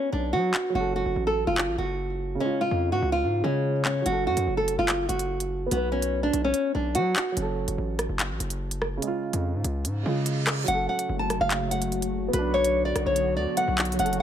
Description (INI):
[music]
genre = hip hop, drill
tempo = 145 BPM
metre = 4/4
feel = half-time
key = F# harmonic minor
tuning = A4 = 438 Hz
[part]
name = nylon-string guitar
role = melody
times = 0.0-7.3, 10.7-14.2 s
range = B3 to A5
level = -26 LUFS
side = equal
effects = none
[part]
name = dark concert grand piano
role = accompaniment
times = 0.0-14.2 s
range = C#3 to B4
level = -32 LUFS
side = right 4 dB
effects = none
[part]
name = hard-hitting 808-style bass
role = bass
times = 0.1-14.2 s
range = E#1 to F#3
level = -29 LUFS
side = left 1 dB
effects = none
[part]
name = drill drum kit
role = drums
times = 0.5-14.2 s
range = handclaps, hi-hat, rim click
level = -29 LUFS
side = equal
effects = none
[part]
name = reverse cymbal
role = sound effects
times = 10.0-10.7 s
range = none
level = -36 LUFS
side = right 5 dB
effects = none
[part]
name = dark analog pad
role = sustained chords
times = 11.0-14.2 s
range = C#3 to F#4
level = -30 LUFS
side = left 1 dB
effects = chorus
[sound]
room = light reverb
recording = faint mains hum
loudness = -23 LUFS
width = side -9 dB against mid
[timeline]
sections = 0.0-10.7 A section; 10.7-14.2 B section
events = break 0.0-4.1, 7.4-10.7; reverse cymbal 10.0-10.7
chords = 0.0 B5; 0.7 F#m; 2.4 C#; 4.1 F#m; 5.7 B5; 7.4 F#m; 9.0 C#; 10.7 F#m; 12.3 Bm